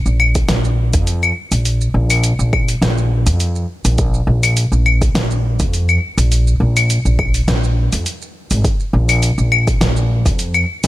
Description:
organic downtempo; 103 BPM; 4/4; swing 54% on 16ths; A4 = 438 Hz
upright bass; bass; 0.1-10.9 s; Ab1 to F2; -14 LUFS; equal; sidechain pumping
deep house drum kit; drums; 0.1-10.9 s; claves, hi-hat, shaker, snare drum; -19 LUFS; left 1 dB
electronic kick drum; drums; 0.4-10.4 s; -18 LUFS; equal
little or no reverb; -13 LUFS; side -16 dB against mid
0.0-10.9 A section

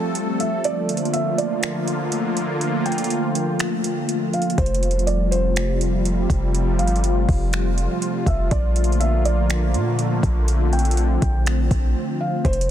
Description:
hip hop, atmospheric cloud-rap; 122 BPM; 4/4; half-time; A4 = 442 Hz
sweeping resonant pad; sustained chords; 0.0-12.7 s; C3 to A4; -23 LUFS; equal; chorus, sidechain pumping
smooth R&B drum kit; drums; 0.2-12.7 s; finger snaps, hi-hat, kick drum; -26 LUFS; equal; overdrive, soft clipping on snare
felt-muted upright piano; melody; 0.4-12.7 s; C5 to G5; -28 LUFS; right 2 dB; low-pass filter, tape echo
warm 808-style bass; bass; 4.6-12.7 s; F1 to Bb2; -20 LUFS; equal
digital ambience; dense, heavily limited modern master; -18 LUFS; side -11 dB against mid
0.0-12.7 A section
break 0.0-4.6, 12.0-12.4
0.0 Fadd9; 0.6 Bbmaj7; 4.6 Fadd9; 8.5 Bbmaj7

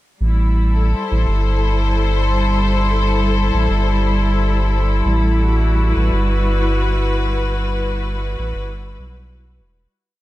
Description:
ambient dub; 99 BPM; 4/4; straight; A dorian; A4 = 439 Hz
clear symphonic string section; sustained chords; 0.2-9.9 s; G3 to C5; -20 LUFS; left 2 dB
warm sub bass; bass; 0.2-9.9 s; E1 to B1; -17 LUFS; equal
light reverb, studio ambience; -15 LUFS; side -16 dB against mid
0.2-9.9 groove
fade-out 6.7-9.9
0.2 Am7; 5.1 Emadd9

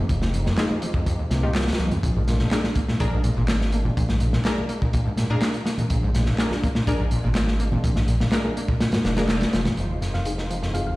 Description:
breakbeat, breaks; 124 BPM; 4/4; straight; A4 = 440 Hz
percussive tonewheel organ; sustained chords; 0.0-11.0 s; F3 to G4; -34 LUFS; equal; overdrive, chorus vibrato, slow rotary speaker, sidechain pumping
overdriven acid bass; riff; 0.0-10.9 s; Eb2 to D4; -26 LUFS; equal; distortion, ensemble chorus, cassette tape, digital delay
saturated sub bass; bass; 0.0-11.0 s; F1 to C2; -24 LUFS; equal
crunchy breakbeat drum kit; drums; 0.1-10.9 s; hi-hat, kick drum, snare drum; -24 LUFS; equal; high-pass filter on kick, high-pass filter on hats, high-pass filter on snare, high-pass filter on room
orchestra-hit-like synth stab; stabs; 0.6-10.9 s; D4 to Bb4; -31 LUFS; left 1 dB; built-in reverb, cassette tape, digital delay
electronic handclaps; drums; 0.6-9.4 s; -35 LUFS; equal
congas; percussion; 0.7-9.8 s; -31 LUFS; right 1 dB
thumb-piano-like synth pluck; melody; 10.1-10.9 s; F5; -33 LUFS; left 1 dB; chorus, small speaker sound, digital delay
light reverb, small room ambience; played on a big sound system in a bare room, large studio reverb, vinyl crackle; -20 LUFS; side -19 dB against mid
0.0-9.8 A section; 9.8-11.0 B section
filter sweep on acid bass 0.0-9.8; band accent 9.3; filter sweep on synth stab 9.8-11.0
0.0 Fm7; 2.0 Bb7; 9.8 Fm7

